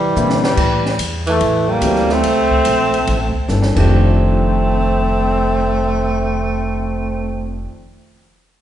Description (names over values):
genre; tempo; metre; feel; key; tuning
jazz, small-group swing and bop; 144 BPM; 4/4; swing 67% on 8ths; F mixolydian; A4 = 440 Hz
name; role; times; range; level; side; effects
bright trombone; melody; 0.0-7.7 s; G3 to C4; -19 LUFS; left 2 dB; none
warm tenor saxophone; second line; 0.0-7.7 s; E3 to A3; -20 LUFS; right 3 dB; none
upright bass; bass; 0.0-7.6 s; F1 to C3; -19 LUFS; equal; none
warm grand piano; accompaniment; 0.2-7.7 s; F2 to A4; -24 LUFS; left 3 dB; none
open jazz drum kit; drums; 0.2-3.8 s; crash cymbal, hi-hat, kick drum, ride cymbal, snare drum; -23 LUFS; equal; none
room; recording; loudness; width
wet recital hall reverb, RT60 1.4 s; recorded in a church or concert hall, nothing above 11.0 kHz; -14 LUFS; side -11 dB against mid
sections
0.6-3.9 A section; 3.9-7.2 B section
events
drum fill 0.2-0.6, 3.5-3.9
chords
0.0 C9; 0.6 Am7; 2.2 C13; 3.7 F13